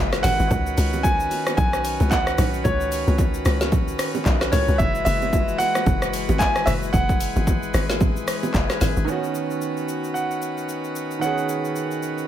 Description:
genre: amapiano.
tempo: 112 BPM.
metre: 4/4.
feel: swing 58% on 16ths.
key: C# minor.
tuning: A4 = 440 Hz.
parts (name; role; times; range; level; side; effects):
clear concert grand piano; melody; 0.0-12.2 s; C#5 to G#5; -25 LUFS; right 2 dB; digital delay.
pipe organ, cornet; sustained chords; 0.0-12.3 s; D#3 to B4; -28 LUFS; left 2 dB; none.
tight log drum bass; bass; 0.0-9.1 s; F#1 to C#2; -23 LUFS; equal; none.
deep house drum kit; drums; 0.1-12.3 s; handclaps, hi-hat, kick drum, rim click, shaker, snare drum; -24 LUFS; left 1 dB; none.
congas and bongos; percussion; 0.2-9.0 s; none; -30 LUFS; right 5 dB; none.
clear grand piano; accompaniment; 9.0-12.3 s; D#3 to G#4; -26 LUFS; right 4 dB; none.
room: light reverb, studio reverb.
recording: none.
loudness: -19 LUFS.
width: side -11 dB against mid.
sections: 0.0-9.1 A section; 9.1-12.3 B section.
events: drop 0.0-9.1.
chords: 0.0 F#9sus4; 0.5 C#9sus4; 4.8 F#9sus4; 9.1 C#9sus4.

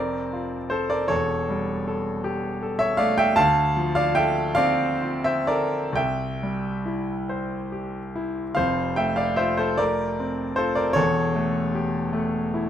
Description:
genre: classical, romantic nocturne for solo piano.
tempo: 41-54 BPM (dotted quarters).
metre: 6/8.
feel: rubato.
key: F major.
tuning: A4 = 439 Hz.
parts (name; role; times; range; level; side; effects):
bright grand piano; solo; 0.0-12.7 s; E1 to A5; -22 LUFS; equal; none.
room: light reverb.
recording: none.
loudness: -22 LUFS.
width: side -10 dB against mid.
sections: 0.0-12.7 A section.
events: none.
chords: 0.0 F; 1.1 A7/E; 3.4 Dm7; 6.0 C; 8.6 F; 11.0 A7/E.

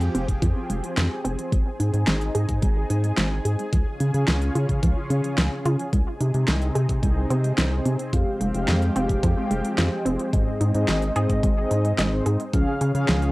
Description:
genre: synthwave.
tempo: 109 BPM.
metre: 4/4.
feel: straight.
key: Ab major.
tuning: A4 = 441 Hz.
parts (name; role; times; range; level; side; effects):
analog string pad; sustained chords; 0.0-13.3 s; C3 to Ab4; -30 LUFS; equal; ensemble chorus, sidechain pumping, cassette tape.
analog pluck; arpeggios; 0.0-13.3 s; F3 to Ab4; -29 LUFS; right 1 dB; chorus, cassette tape, analog delay.
round analog bass; bass; 0.0-13.3 s; F1 to Db3; -23 LUFS; equal; sidechain pumping.
pop drum kit; drums; 0.0-13.3 s; hi-hat, snare drum; -27 LUFS; equal; cassette tape.
electronic kick drum; drums; 0.3-12.6 s; none; -23 LUFS; equal; cassette tape.
mellow synth brass; stabs; 8.1-13.3 s; Ab2 to F5; -26 LUFS; left 1 dB; chorus, cassette tape, analog delay.
room: light reverb.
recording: home recording on cassette.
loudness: -20 LUFS.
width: side -20 dB against mid.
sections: 0.0-13.3 A section.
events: filter sweep on synth arpeggio sound 0.0-13.3.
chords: 0.0 Fmadd9; 1.5 Ab; 3.7 Db; 5.9 Ab/C; 8.1 Fmadd9; 10.3 Ab; 12.5 Db.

